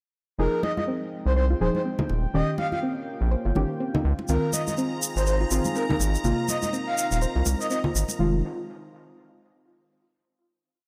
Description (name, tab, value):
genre	deep house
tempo	123 BPM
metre	4/4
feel	swing 57% on 16ths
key	F minor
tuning	A4 = 439 Hz
part	breathy flute-like synth lead	melody	0.4-7.8 s	Bb4 to F5	-32 LUFS	equal	chorus, tape echo
part	dark analog pad	sustained chords	1.0-8.4 s	Ab3 to G5	-38 LUFS	equal	chorus, vintage 12-bit sampler grit
part	deep mellow chord stab	stabs	0.4-8.4 s	C3 to Ab4	-32 LUFS	equal	chorus, tape echo
part	round analog bass	bass	0.4-8.4 s	Eb1 to Db2	-26 LUFS	equal	none
part	congas	percussion	0.6-8.2 s	none	-34 LUFS	equal	none
part	soft round pluck	arpeggios	0.8-8.4 s	C4 to C5	-35 LUFS	equal	chorus, tape echo
part	egg shaker	percussion	4.3-8.2 s	none	-32 LUFS	equal	none
part	string machine, violins	texture	4.3-8.2 s	Bb5	-39 LUFS	equal	ensemble chorus
room	light reverb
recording	none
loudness	-25 LUFS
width	mono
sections	0.4-8.2 drop; 8.2-10.1 final chord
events	drop 0.4-8.2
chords	0.4 Fm7; 2.1 Eb7; 4.0 Dbmaj9 (rootless); 6.2 Ab69 (rootless); 8.2 Fm7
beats	| 0.39 0.88 1.36 1.85 | 2.34 2.83 3.31 3.80 | 4.29 4.78 5.27 5.75 | 6.24 6.73 7.22 7.71 | 8.19